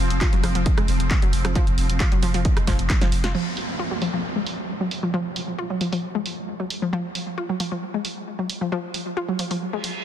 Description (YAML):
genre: driving peak-time techno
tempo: 134 BPM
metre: 4/4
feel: straight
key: unclear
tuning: A4 = 441 Hz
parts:
  - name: saturated sub bass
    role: bass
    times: 0.0-3.3 s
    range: F1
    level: -24 LUFS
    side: equal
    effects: tube saturation, sidechain pumping, low-pass filter
  - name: swarming drone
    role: drone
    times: 0.0-3.4 s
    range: F3 to C4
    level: -31 LUFS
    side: left 1 dB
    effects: built-in reverb, sidechain pumping
  - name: punchy analog drum machine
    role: drums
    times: 0.1-9.9 s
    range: crash cymbal, handclaps, hi-hat, rim click, snare drum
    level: -29 LUFS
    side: right 1 dB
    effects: sidechain pumping on hats, low-pass filter on hats, studio reverb, low-pass filter on snare, sidechain pumping on cymbals, low-pass filter on cymbals
  - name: analog pluck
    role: riff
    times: 0.2-9.8 s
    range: F3 to F4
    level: -26 LUFS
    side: left 1 dB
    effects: chorus, sidechain pumping, tape echo
  - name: electronic kick drum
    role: drums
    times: 0.2-3.0 s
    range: none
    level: -20 LUFS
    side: equal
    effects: studio reverb
  - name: downlifter and reverse cymbal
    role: sound effects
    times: 3.3-6.9, 9.7-10.0 s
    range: none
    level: -32 LUFS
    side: right 3 dB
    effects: none
room: light reverb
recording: dense, heavily limited modern master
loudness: -21 LUFS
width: side -10 dB against mid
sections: 0.0-3.3 A section; 3.3-10.0 B section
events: drop 0.0-3.3; drum fill 2.7-3.3; band accent 3.2; reverse cymbal 9.7-10.0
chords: 0.0 F5; 3.3 N.C.